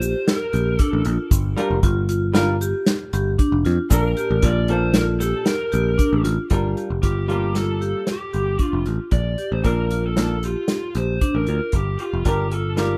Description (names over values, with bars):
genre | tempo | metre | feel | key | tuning
progressive instrumental, band music in an uneven meter | 115 BPM | 5/4 | straight | G minor | A4 = 439 Hz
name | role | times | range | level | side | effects
lead guitar through a small cranked amp | melody | 0.0-13.0 s | F4 to D5 | -30 LUFS | equal | overdrive, digital delay
vibraphone with medium mallets | arpeggios | 0.0-12.9 s | D4 to G4 | -28 LUFS | equal | digital delay
picked electric bass | bass | 0.0-13.0 s | F1 to F2 | -24 LUFS | equal | none
unplugged drum kit | drums | 0.0-12.9 s | hi-hat, kick drum, snare drum | -23 LUFS | equal | none
egg shaker | percussion | 0.0-6.1 s | none | -36 LUFS | equal | none
vintage hollow-body jazz guitar | accompaniment | 1.6-13.0 s | Bb2 to Bb4 | -28 LUFS | equal | double-tracked
room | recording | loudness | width
studio reverb | rough home demo mix | -21 LUFS | mono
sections
0.0-6.5 A section; 6.5-13.0 B section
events
none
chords
0.0 Bb; 1.3 Gm7; 3.9 Bbmaj7; 6.5 Gm7; 9.1 Bbmaj7; 11.7 Gm7